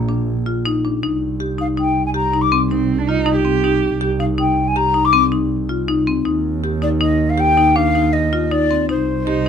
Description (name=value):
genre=contemporary instrumental, chamber music in an uneven meter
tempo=160 BPM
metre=7/4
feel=straight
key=C minor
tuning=A4 = 440 Hz
part: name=warm double bass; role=bass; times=0.0-9.5 s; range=Bb1 to Eb2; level=-21 LUFS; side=right 4 dB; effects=none
part: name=marimba with hard mallets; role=arpeggios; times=0.1-9.5 s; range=C4 to G4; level=-19 LUFS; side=left 4 dB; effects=none
part: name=breathy mellow jazz flute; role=melody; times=1.6-9.5 s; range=C5 to D6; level=-17 LUFS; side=left 4 dB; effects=none
part: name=dark cello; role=second line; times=2.7-4.1, 9.3-9.5 s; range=C4 to G4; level=-20 LUFS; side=right 8 dB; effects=none
room=light reverb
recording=close, detailed microphones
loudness=-15 LUFS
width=side -8 dB against mid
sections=0.0-9.5 A section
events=none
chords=0.0 Bb; 1.0 Cm; 6.3 N.C.; 8.9 Cm